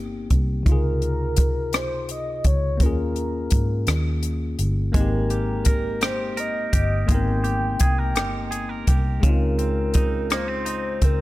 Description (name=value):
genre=slow six-eight R&B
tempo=56 BPM (dotted quarters)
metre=6/8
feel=straight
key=Ab major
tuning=A4 = 440 Hz
part: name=mellow horn-like synth lead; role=melody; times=0.0-11.2 s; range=Bb4 to G5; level=-29 LUFS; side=equal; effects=chorus
part: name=mellow tine electric piano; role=accompaniment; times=0.0-11.2 s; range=C3 to Bb4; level=-29 LUFS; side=left 3 dB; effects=none
part: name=vintage muted fingered electric bass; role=bass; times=0.0-11.2 s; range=G1 to Ab2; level=-24 LUFS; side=equal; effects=none
part: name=compact cocktail drum kit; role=drums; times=0.3-11.2 s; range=hi-hat, kick drum, rim click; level=-21 LUFS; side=equal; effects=none
part: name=twangy electric guitar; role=second line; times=4.9-11.2 s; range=Db3 to Bb4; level=-30 LUFS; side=right 4 dB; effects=phaser
room=studio reverb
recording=none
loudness=-20 LUFS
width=side -17 dB against mid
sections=0.0-11.2 A section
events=none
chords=0.0 Abmaj9 (rootless); 0.7 Dbmaj9; 2.8 Eb7sus4; 4.9 Abmaj9; 9.2 Dbmaj9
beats=| 0.66 1.73 | 2.80 3.87 | 4.95 6.02 | 7.09 8.16 | 9.23 10.30